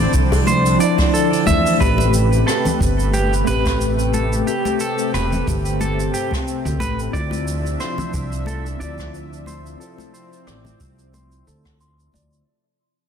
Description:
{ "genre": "sunset chillout", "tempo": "90 BPM", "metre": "4/4", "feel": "swing 55% on 16ths", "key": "A minor", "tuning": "A4 = 440 Hz", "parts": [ { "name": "nylon-string guitar", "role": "melody", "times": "0.0-1.1 s", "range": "none", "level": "barely audible", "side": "none", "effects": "none" }, { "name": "mellow tine electric piano", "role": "accompaniment", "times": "0.0-12.5 s", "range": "F3 to B5", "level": "-24 LUFS", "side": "moving between left 7 dB and right 4 dB", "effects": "medium stereo tremolo, auto-pan, digital delay" }, { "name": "lush unison pad", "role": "sustained chords", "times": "0.0-12.4 s", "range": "C3 to E5", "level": "-25 LUFS", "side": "left 1 dB", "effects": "chorus" }, { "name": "clean electric guitar", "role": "arpeggios", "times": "0.0-12.5 s", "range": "G4 to C6", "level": "-24 LUFS", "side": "right 3 dB", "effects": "low-pass filter, digital delay" }, { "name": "upright bass", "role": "bass", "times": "0.0-12.4 s", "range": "E1 to E2", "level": "-21 LUFS", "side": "equal", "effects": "none" }, { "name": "electronic kick drum", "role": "drums", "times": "0.1-12.3 s", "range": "none", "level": "-22 LUFS", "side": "equal", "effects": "none" }, { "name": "jazz brush drum kit", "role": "drums", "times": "0.1-12.4 s", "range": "hi-hat, rim click, shaker", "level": "-28 LUFS", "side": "right 1 dB", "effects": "none" }, { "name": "bongos and congas", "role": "percussion", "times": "0.3-12.3 s", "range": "none", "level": "-27 LUFS", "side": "left 4 dB", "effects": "none" } ], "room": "light reverb, studio reverb", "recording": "dense, heavily limited modern master", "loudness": "-16 LUFS", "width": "side -7 dB against mid", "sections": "0.0-1.8 A section; 1.8-12.5 B section", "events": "fade-out 1.8-12.5; filter sweep on clean electric guitar 1.8-12.5", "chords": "0.0 Dm9; 1.8 Am9; 7.1 Dm9", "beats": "0.47 1.14 | 1.80 2.47 3.13 3.80 | 4.47 5.13 5.80 6.47 | 7.13 7.80 8.47 9.13 | 9.80 10.47 11.13 11.80" }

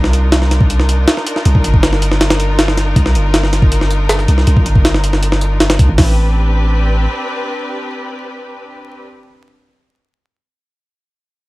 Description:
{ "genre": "drum and bass, jungle", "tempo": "159 BPM", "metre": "4/4", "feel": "straight", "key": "unclear", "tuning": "A4 = 437 Hz", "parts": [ { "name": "rich studio string section", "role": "sustained chords", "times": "0.0-9.0 s", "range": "C4 to B4", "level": "-21 LUFS", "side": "left 1 dB", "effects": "none" }, { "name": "long sustained 808-style bass", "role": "bass", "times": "0.0-7.1 s", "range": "G1 to D2", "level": "-13 LUFS", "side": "equal", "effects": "none" }, { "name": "jungle sampler-style drum kit", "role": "drums", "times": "0.0-6.1 s", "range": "hi-hat, kick drum, snare drum", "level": "-13 LUFS", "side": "equal", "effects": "none" } ], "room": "little or no reverb", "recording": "vinyl crackle", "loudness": "-11 LUFS", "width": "side -20 dB against mid", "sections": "0.0-6.0 A section; 6.0-9.0 B section", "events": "drop 0.0-6.0", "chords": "0.0 Cm11; 6.0 Am11", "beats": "0.32 0.70 1.08 | 1.45 1.83 2.21 2.58 | 2.96 3.34 3.72 4.09 | 4.47 4.85 5.23 5.60 | 5.98 6.36 6.74 7.11 | 7.49 7.87 8.25 8.62" }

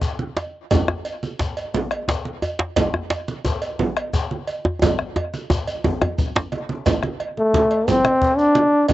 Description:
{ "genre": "west african traditional, West African drum ensemble", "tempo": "117 BPM (dotted quarters)", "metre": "12/8", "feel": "straight", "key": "unclear", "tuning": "A4 = 438 Hz", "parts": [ { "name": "bombo", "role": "percussion", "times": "0.0-8.9 s", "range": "none", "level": "-24 LUFS", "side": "left 2 dB", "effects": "none" }, { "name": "djembe", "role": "percussion", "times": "0.0-8.9 s", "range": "none", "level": "-31 LUFS", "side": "left 5 dB", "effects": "slapback echo" }, { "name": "shekere", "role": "percussion", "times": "0.0-8.9 s", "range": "none", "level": "-34 LUFS", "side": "left 1 dB", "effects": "none" }, { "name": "congas", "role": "percussion", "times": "0.2-8.9 s", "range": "none", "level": "-24 LUFS", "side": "right 4 dB", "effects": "none" }, { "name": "cowbell", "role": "percussion", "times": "0.4-8.9 s", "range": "none", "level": "-28 LUFS", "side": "right 4 dB", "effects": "none" }, { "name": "djembe", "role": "percussion", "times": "0.4-6.5 s", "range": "none", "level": "-23 LUFS", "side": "equal", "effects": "none" }, { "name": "warm trombone", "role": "melody", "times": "7.4-8.9 s", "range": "A3 to D4", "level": "-15 LUFS", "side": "left 1 dB", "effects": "slapback echo" } ], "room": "light reverb", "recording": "recorded outdoors, with no room sound, nothing above 7.9 kHz", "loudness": "-19 LUFS", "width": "side -15 dB against mid", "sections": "0.0-6.9 A section; 6.9-8.9 B section", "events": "drum fill 4.8-6.9", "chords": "none", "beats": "0.19 | 0.71 1.22 1.74 2.25 | 2.77 3.28 3.79 4.31 | 4.82 5.33 5.84 6.35 | 6.86 7.37 7.88 8.39 | 8.89" }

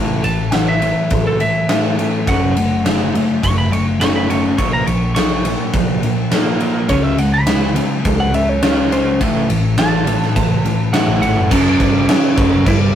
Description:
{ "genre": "quiet-loud alternative rock", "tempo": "104 BPM", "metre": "4/4", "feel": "straight", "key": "unclear", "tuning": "A4 = 440 Hz", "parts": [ { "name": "electric guitar through a small old amp", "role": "arpeggios", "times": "0.0-11.5 s", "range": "A2 to C#4", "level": "-23 LUFS", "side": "left 1 dB", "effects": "digital delay" }, { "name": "thick fuzz guitar", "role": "riff", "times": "0.0-12.9 s", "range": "F#2 to C#4", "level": "-20 LUFS", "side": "left 4 dB", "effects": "distortion" }, { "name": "hollow-body short-scale picked electric bass", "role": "bass", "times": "0.0-12.9 s", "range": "F#1 to A#2", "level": "-21 LUFS", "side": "equal", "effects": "none" }, { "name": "lightly driven lead guitar", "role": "melody", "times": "0.2-12.8 s", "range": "C#4 to C#6", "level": "-19 LUFS", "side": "right 1 dB", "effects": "none" }, { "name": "big rock drum kit", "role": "drums", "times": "0.2-12.8 s", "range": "crash cymbal, kick drum, ride cymbal, snare drum", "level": "-18 LUFS", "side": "equal", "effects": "none" }, { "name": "overdriven semi-hollow guitar", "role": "riff", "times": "2.3-12.9 s", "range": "F#2 to C#4", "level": "-25 LUFS", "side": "right 5 dB", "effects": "tremolo" }, { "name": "high-gain distorted guitar", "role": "riff", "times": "11.5-12.9 s", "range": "F#2 to G3", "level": "-27 LUFS", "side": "right 1 dB", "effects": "distortion" } ], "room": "moderate booth ambience, RT60 0.2 s", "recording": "rough rehearsal-room recording, warm saturation", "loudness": "-13 LUFS", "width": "side -10 dB against mid", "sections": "0.0-11.5 A section; 11.5-12.9 B section", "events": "lead electric guitar solo 0.0-11.5", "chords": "0.0 A5; 2.3 F#m; 4.6 A#m; 6.9 C#5; 9.2 A5; 11.5 F#5", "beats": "0.53 1.11 1.69 | 2.27 2.85 3.43 4.00 | 4.58 5.16 5.74 6.32 | 6.89 7.47 8.05 8.63 | 9.20 9.78 10.36 10.93 | 11.51 12.09 12.66" }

